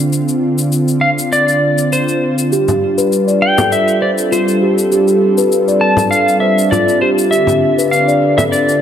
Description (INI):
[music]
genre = organic downtempo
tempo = 100 BPM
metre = 4/4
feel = straight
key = unclear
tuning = A4 = 436 Hz
[part]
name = warm analog pad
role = sustained chords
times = 0.0-8.8 s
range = D3 to D5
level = -16 LUFS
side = right 1 dB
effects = chorus, shimmer reverb
[part]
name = cabasa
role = drums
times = 0.1-8.8 s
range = none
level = -24 LUFS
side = left 6 dB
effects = overdrive
[part]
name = clean lap steel guitar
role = melody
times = 1.0-8.8 s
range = C5 to A5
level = -15 LUFS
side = equal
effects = shimmer reverb, ping-pong delay
[part]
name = steel tongue drum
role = arpeggios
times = 2.5-8.5 s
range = F4 to D5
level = -15 LUFS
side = left 1 dB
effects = shimmer reverb, ping-pong delay
[part]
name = frame drum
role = percussion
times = 2.7-8.5 s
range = none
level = -20 LUFS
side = left 2 dB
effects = none
[sound]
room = wet lush hall reverb, RT60 2.0 s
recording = none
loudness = -11 LUFS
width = side -9 dB against mid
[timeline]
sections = 0.0-8.8 A section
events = filter sweep on analog synth pad 0.0-8.8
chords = 0.0 Dm7; 2.5 G7sus4; 7.3 Dm7